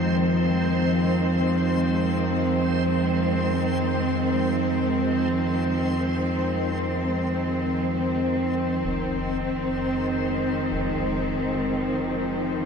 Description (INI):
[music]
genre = dark ambient drone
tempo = free time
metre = none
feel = none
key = F minor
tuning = A4 = 439 Hz
[part]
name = dark studio cello section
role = sustained chords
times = 0.0-12.7 s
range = Eb3 to C4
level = -24 LUFS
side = left 1 dB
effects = none
[part]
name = deep rumbling drone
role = drone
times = 0.0-12.7 s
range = F2 to F3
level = -26 LUFS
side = right 2 dB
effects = built-in reverb
[part]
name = backwards swelling texture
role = texture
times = 0.0-12.7 s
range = C5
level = -35 LUFS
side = right 2 dB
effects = built-in reverb
[part]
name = concert bass drum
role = percussion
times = 8.8-10.9 s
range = none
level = -38 LUFS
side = left 1 dB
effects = low-pass filter on kick
[sound]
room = wet huge ambient reverb, RT60 7.4 s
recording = none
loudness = -22 LUFS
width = side -6 dB against mid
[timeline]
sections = 0.0-8.8 A section; 8.8-12.7 B section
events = fade-out on synth texture 0.0-8.8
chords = 0.0 F5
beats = free time